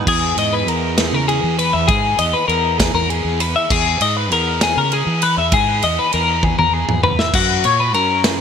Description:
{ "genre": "math rock and midwest emo", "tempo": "66 BPM (dotted quarters)", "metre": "6/8", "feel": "straight", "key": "E lydian", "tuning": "A4 = 440 Hz", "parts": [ { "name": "twangy electric guitar", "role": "accompaniment", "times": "0.0-1.9 s", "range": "E2 to E3", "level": "-25 LUFS", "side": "right 12 dB", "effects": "analog chorus" }, { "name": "twelve-string electric guitar", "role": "arpeggios", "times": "0.0-8.4 s", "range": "F#4 to E5", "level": "-17 LUFS", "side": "left 5 dB", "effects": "analog chorus, ping-pong delay" }, { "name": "fuzz fingered electric bass", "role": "bass", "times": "0.0-8.4 s", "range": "E2 to E3", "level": "-21 LUFS", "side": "right 1 dB", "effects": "overdrive" }, { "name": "modern studio drum kit", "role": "drums", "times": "0.1-8.4 s", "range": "crash cymbal, kick drum, ride cymbal, snare drum, toms", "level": "-20 LUFS", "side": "right 1 dB", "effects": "none" } ], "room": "moderate plate reverb, RT60 1.6 s, small room reverb", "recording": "bright 1980s-style digital production", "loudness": "-14 LUFS", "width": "side -7 dB against mid", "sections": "0.1-8.4 A section", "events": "drum fill 6.4-7.3", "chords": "0.1 E; 7.3 F#" }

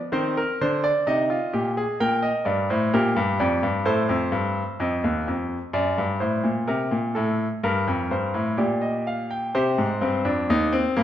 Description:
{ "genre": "classical, baroque-style 3-part fugue for grand piano", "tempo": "64 BPM", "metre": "4/4", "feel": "straight", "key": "C minor", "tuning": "A4 = 440 Hz", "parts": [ { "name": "bright concert grand piano", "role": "solo", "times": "0.1-11.0 s", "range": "Eb2 to G5", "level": "-21 LUFS", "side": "equal", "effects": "none" } ], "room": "moderate recital hall reverb, RT60 1.5 s", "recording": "none", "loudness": "-21 LUFS", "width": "side -11 dB against mid", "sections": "0.0-9.6 A section; 9.6-11.0 B section", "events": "none", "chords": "0.1 Cm; 2.0 Gm; 3.9 Am7b5; 5.7 D7/F#; 7.6 Gm; 9.6 Cm" }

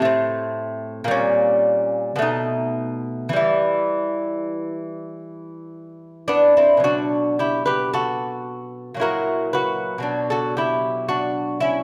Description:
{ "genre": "classical, baroque-style dance for lute", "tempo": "51-58 BPM", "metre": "3/4", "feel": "rubato", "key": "E minor, B minor from 6.8 s", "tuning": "A4 = 440 Hz", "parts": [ { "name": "lute", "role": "solo", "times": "0.0-11.8 s", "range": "A2 to B4", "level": "-22 LUFS", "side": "equal", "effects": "none" } ], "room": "wet recital hall reverb, RT60 1.5 s", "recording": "recorded in a church or concert hall", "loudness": "-21 LUFS", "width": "mono", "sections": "0.0-6.8 A section; 6.8-11.8 A section", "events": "none", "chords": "0.1 Am; 1.1 A#m6; 2.2 B7; 3.4 Em; 6.8 Bm; 9.0 F#7/A#; 10.1 Bm" }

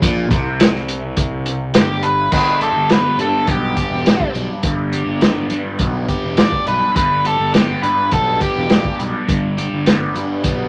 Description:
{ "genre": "psychedelic rock", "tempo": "104 BPM", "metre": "4/4", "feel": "straight", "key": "G major", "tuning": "A4 = 441 Hz", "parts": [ { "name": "crunchy overdriven guitar", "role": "riff", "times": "0.0-10.7 s", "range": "G2 to G4", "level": "-24 LUFS", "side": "equal", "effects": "phaser" }, { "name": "fuzz fingered electric bass", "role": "bass", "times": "0.0-10.7 s", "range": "E1 to G2", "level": "-25 LUFS", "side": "equal", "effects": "overdrive" }, { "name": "vintage drum kit", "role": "drums", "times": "0.0-10.6 s", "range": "crash cymbal, hi-hat, kick drum, snare drum", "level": "-19 LUFS", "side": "equal", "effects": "none" }, { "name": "octave-fuzz lead guitar", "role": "melody", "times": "1.8-9.0 s", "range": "G4 to D5", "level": "-20 LUFS", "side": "equal", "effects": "distortion" } ], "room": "wet small room ambience, RT60 0.5 s", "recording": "none", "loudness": "-17 LUFS", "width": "mono", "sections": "0.0-2.3 A section; 2.3-10.7 B section", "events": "none", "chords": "0.0 G5; 2.3 G" }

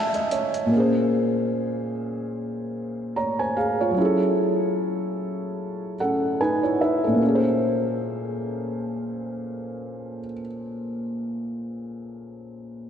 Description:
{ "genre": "lo-fi hip hop", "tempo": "74 BPM", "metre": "4/4", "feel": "swing 57% on 16ths", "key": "Bb minor", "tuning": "A4 = 441 Hz", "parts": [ { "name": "felt-muted upright piano", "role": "accompaniment", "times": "0.0-12.9 s", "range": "Bb2 to Bb5", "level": "-23 LUFS", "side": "equal", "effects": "cassette tape" }, { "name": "electronic hi-hat", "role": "drums", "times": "0.1-0.7 s", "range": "none", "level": "-35 LUFS", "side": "left 1 dB", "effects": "overdrive, vintage 12-bit sampler grit" } ], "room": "wet lush hall reverb, RT60 3.3 s", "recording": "dreamy mix soaked in reverb", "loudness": "-22 LUFS", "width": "side -8 dB against mid", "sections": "0.0-7.2 A section; 7.2-10.4 B section", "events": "felt piano fill 0.0-0.7, 5.6-7.2", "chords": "0.0 Gbm9; 0.7 Bbm9; 4.0 Gbm9; 7.2 Bbm9" }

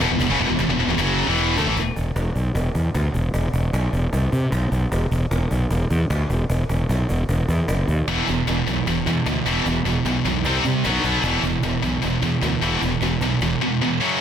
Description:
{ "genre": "heavy metal", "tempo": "152 BPM", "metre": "4/4", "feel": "straight", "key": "unclear", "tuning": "A4 = 440 Hz", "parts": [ { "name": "heavy high-gain guitar", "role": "riff", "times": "0.0-1.8, 8.1-14.2 s", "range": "E2 to C4", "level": "-23 LUFS", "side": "left 10 dB", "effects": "distortion" }, { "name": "scooped high-gain guitar", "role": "riff", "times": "0.0-1.8, 8.1-14.2 s", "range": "E2 to C4", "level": "-23 LUFS", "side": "right 10 dB", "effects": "distortion" }, { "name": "tight distorted guitar", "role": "riff", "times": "0.0-1.8 s", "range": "E2 to A3", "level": "-26 LUFS", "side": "left 1 dB", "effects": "distortion" }, { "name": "fuzz fingered electric bass", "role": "bass", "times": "0.0-13.5 s", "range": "E1 to C3", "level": "-22 LUFS", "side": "equal", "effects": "overdrive" }, { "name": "cajon", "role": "drums", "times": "0.0-13.5 s", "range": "none", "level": "-28 LUFS", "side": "equal", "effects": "none" } ], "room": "little or no reverb", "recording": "dense, heavily limited modern master", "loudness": "-19 LUFS", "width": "side -9 dB against mid", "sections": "0.0-1.8 A section; 1.8-14.2 B section", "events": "drum fill 1.4-1.8", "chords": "0.0 E5; 4.1 N.C.; 4.9 E5; 7.7 D#m/F#; 8.1 E5; 10.4 C5; 10.8 B5; 11.2 E5" }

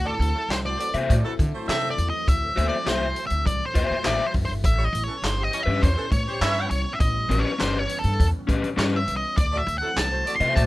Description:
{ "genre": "funk", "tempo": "101 BPM", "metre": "4/4", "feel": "straight", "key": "unclear", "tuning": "A4 = 444 Hz", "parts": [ { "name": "octave-fuzz lead guitar", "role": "melody", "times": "0.0-10.6 s", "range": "A4 to C6", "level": "-26 LUFS", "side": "equal", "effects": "distortion" }, { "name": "warm horn section", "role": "second line", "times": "0.0-10.7 s", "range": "E3 to E5", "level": "-29 LUFS", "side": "right 2 dB", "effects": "none" }, { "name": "phased string machine", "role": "sustained chords", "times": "0.0-10.7 s", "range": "E3 to C#4", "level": "-37 LUFS", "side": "equal", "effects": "ensemble chorus, phaser" }, { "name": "upright bass", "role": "bass", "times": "0.0-10.7 s", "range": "F#1 to D3", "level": "-25 LUFS", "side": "equal", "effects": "none" }, { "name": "vintage drum kit", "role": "drums", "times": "0.2-10.7 s", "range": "handclaps, hi-hat, kick drum, snare drum", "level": "-26 LUFS", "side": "equal", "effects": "none" }, { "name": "crunchy overdriven guitar", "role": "accompaniment", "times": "0.9-10.6 s", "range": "C#4 to E5", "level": "-27 LUFS", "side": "left 4 dB", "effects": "spring reverb" } ], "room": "little or no reverb", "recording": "rough home demo mix", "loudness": "-21 LUFS", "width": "side -18 dB against mid", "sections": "0.0-10.7 A section", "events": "lead electric guitar solo 0.0-10.7", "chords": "0.0 D9; 4.6 A9; 9.4 D9" }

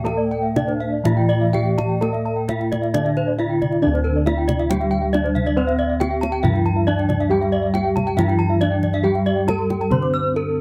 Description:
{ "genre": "Balinese gamelan", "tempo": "117-138 BPM", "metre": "4/4", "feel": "straight", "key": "D slendro", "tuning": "A4 = 444 Hz", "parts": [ { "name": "gamelan-type bronze metallophone", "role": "melody", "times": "0.0-10.6 s", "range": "C4-45c to C5-45c", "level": "-26 LUFS", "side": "equal", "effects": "none" }, { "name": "breathy xiao", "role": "second line", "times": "0.0-2.4 s", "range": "D5 to A5+29c", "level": "-32 LUFS", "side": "equal", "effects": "none" }, { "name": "gamelan-type bronze metallophone", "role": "accompaniment", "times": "0.0-10.6 s", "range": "D3 to C4-45c", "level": "-28 LUFS", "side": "equal", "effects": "none" }, { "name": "gamelan-type bronze metallophone", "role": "arpeggios", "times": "0.0-10.1 s", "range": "C5-45c to D6", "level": "-32 LUFS", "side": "equal", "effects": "none" }, { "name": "gamelan-type bossed gongs", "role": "bass", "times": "0.0-10.6 s", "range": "D2 to C5-45c", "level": "-24 LUFS", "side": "equal", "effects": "none" }, { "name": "gamelan-type bronze metallophone", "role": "arpeggios", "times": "0.1-10.2 s", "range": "A4+25c to E6+30c", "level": "-28 LUFS", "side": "equal", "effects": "none" }, { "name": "kendang", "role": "percussion", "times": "0.1-10.1 s", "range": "none", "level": "-28 LUFS", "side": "equal", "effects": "none" } ], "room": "light reverb", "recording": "none", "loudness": "-20 LUFS", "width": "mono", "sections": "0.0-3.8 A section; 3.8-10.6 B section", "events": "none", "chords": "none" }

